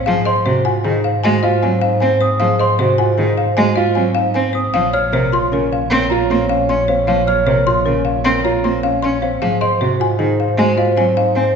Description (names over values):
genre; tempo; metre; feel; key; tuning
classical, minimalist pattern music; 154 BPM; 6/4; straight; unclear; A4 = 442 Hz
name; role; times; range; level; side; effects
folk marimba with medium hard mallets; melody; 0.0-11.6 s; Ab4 to C6; -21 LUFS; left 6 dB; none
dark grand piano; arpeggios; 0.0-11.6 s; C4 to Db5; -20 LUFS; right 5 dB; none
worn celesta; arpeggios; 0.0-11.0 s; F5 to F6; -23 LUFS; left 1 dB; none
mellow French horn; second line; 0.1-11.6 s; C5 to Db5; -21 LUFS; equal; none
rich cello; accompaniment; 0.1-11.5 s; C3 to Db4; -20 LUFS; equal; none
rich double bass; bass; 0.1-11.6 s; Bb1 to Ab2; -21 LUFS; right 1 dB; none
room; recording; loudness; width
wet recital hall reverb, RT60 1.5 s; recorded in a church or concert hall, nothing above 7.9 kHz; -13 LUFS; side -6 dB against mid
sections
0.0-11.6 A section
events
none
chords
0.1 Ab7; 4.7 Bbm; 9.4 Ab7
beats
| 0.07 0.46 0.84 1.24 1.62 2.01 | 2.40 2.79 3.18 3.57 3.96 4.35 | 4.74 5.13 5.52 5.91 6.30 6.69 | 7.08 7.47 7.86 8.25 8.64 9.03 | 9.42 9.81 10.20 10.59 10.97 11.36